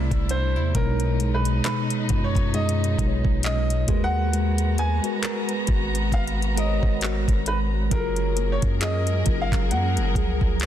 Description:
contemporary R&B; 67 BPM; 4/4; swing 58% on 16ths; A4 = 441 Hz
warm grand piano; melody; 0.0-10.6 s; A#4 to G#5; -30 LUFS; right 1 dB; digital delay
mellow tine electric piano; accompaniment; 0.0-10.7 s; B2 to D5; -28 LUFS; right 1 dB; medium stereo tremolo
warm studio string section; sustained chords; 0.0-10.7 s; C3 to A#5; -33 LUFS; equal
nylon-string guitar; arpeggios; 0.0-10.7 s; B2 to A#4; -33 LUFS; left 9 dB; digital delay
long sustained 808-style bass; bass; 0.0-10.7 s; F#1 to F#2; -24 LUFS; equal
smooth R&B drum kit; drums; 0.1-10.7 s; handclaps, hi-hat, kick drum; -25 LUFS; equal
small room reverb; dense, heavily limited modern master; -20 LUFS; side -11 dB against mid
0.0-10.7 A section
0.0 C69; 0.8 B69; 3.9 G#m9; 7.9 F#maj9

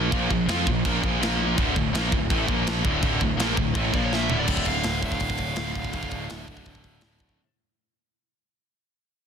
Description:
heavy metal; 165 BPM; 4/4; straight; D minor; A4 = 440 Hz
heavy high-gain guitar; riff; 0.0-7.4 s; D2 to F4; -28 LUFS; left 10 dB; distortion
scooped high-gain guitar; riff; 0.0-7.4 s; D2 to F4; -29 LUFS; right 16 dB; distortion
fuzz picked electric bass; bass; 0.0-7.4 s; D1 to F2; -29 LUFS; equal; overdrive
tight metal drum kit; drums; 0.1-7.4 s; china cymbal, crash cymbal, hi-hat, kick drum, snare drum, toms; -27 LUFS; equal
nasal lead guitar with a parked wah; melody; 3.9-7.0 s; C#5 to F5; -32 LUFS; right 4 dB; overdrive
small room ambience; dense, heavily limited modern master; -22 LUFS; side -7 dB against mid
0.0-4.5 A section; 4.5-7.4 B section
drum fill 4.1-4.5; fade-out 4.5-7.4
0.0 Bb5; 1.6 Dm; 2.5 Bb5; 2.9 Dm; 3.9 Bb5; 4.3 D5

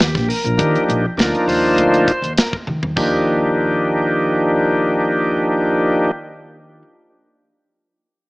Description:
electric jazz fusion; 101 BPM; 4/4; straight; Eb major; A4 = 440 Hz
bright tonewheel organ; accompaniment; 0.0-6.1 s; F3 to C5; -15 LUFS; equal; slow rotary speaker, overdrive
upright bass; bass; 0.0-6.8 s; Bb1 to Eb3; -24 LUFS; equal
tight funk drum kit; drums; 0.0-3.1 s; hi-hat, kick drum, snare drum, splash cymbal, toms; -19 LUFS; equal
light reverb, studio ambience; small speaker sound; -14 LUFS; side -24 dB against mid
0.0-3.0 A section; 3.0-5.4 B section
drum fill 2.7
0.0 Ebmaj9

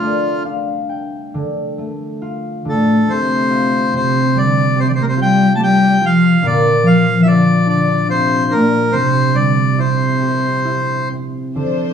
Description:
celtic folk, Celtic slow air; 70 BPM; 3/4; uneven beats, rubato; A4 = 440 Hz
accordion; melody; 0.0-11.1 s; F4 to A5; -17 LUFS; left 1 dB
concert harp; accompaniment; 0.0-11.9 s; Bb2 to G5; -17 LUFS; right 2 dB
dark cello; second line; 2.7-11.1 s; A2 to A3; -17 LUFS; left 2 dB
rich symphonic string section; sustained chords; 11.6-11.9 s; F3 to C5; -21 LUFS; left 6 dB
moderate stone room reverb, RT60 1.1 s; band playing live in one room, studio reverb; -12 LUFS; side -7 dB against mid
0.0-1.4 A section; 1.4-11.9 B section
harp fill 0.0-1.4
0.0 Dm; 3.9 Csus4; 6.4 Bb; 8.9 C

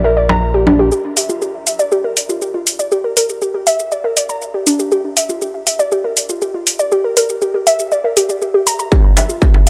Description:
melodic techno; 120 BPM; 4/4; straight; G dorian; A4 = 438 Hz
warbly dusty pluck; arpeggios; 0.0-9.7 s; D4 to Bb5; -17 LUFS; equal; chorus, sidechain pumping, analog delay
gritty driven synth bass; bass; 0.0-0.9 s; Bb1; -20 LUFS; equal; sidechain pumping
electronic congas, shaker and hi-hat; drums; 0.3-9.7 s; -18 LUFS; equal; high-pass filter on perc, high-pass filter on hats
electronic kick drum; drums; 8.9-9.5 s; -12 LUFS; equal; distortion
light reverb, digital ambience; dry, gritty hardware recording; -15 LUFS; mono
0.9-9.7 A section
build-up 0.9-9.7; filter sweep on synth arpeggio sound 0.9-9.7
0.0 Bb; 0.9 Gm; 8.9 Fsus2

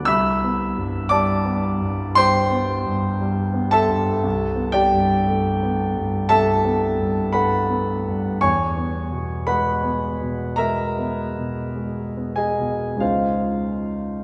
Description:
classical, impressionist solo piano; 46-60 BPM; 4/4; rubato; A4 = 438 Hz
warm concert grand piano; solo; 0.0-14.2 s; C2 to E6; -21 LUFS; equal
wet church reverb, RT60 2.7 s; recorded in a church or concert hall; -21 LUFS; mono
0.0-14.2 A section
0.1 Cmaj7; 4.2 Asus2/C; 8.4 Emaj7#11; 13.0 Dbadd9

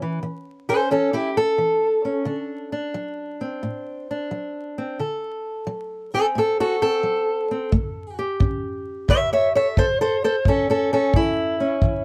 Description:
acoustic country blues, solo or duo; 88 BPM; 4/4; swing 68% on 8ths; A4 = 440 Hz
fingerpicked old ladder-braced acoustic guitar; melody; 0.0-12.0 s; A2 to E5; -23 LUFS; equal
kick drum; drums; 7.7-12.0 s; -24 LUFS; equal
light reverb; close, detailed microphones, vinyl crackle; -23 LUFS; mono
0.0-12.0 A section
steel-string acoustic guitar solo 0.0-12.0
0.0 A; 2.3 D7; 7.7 A7

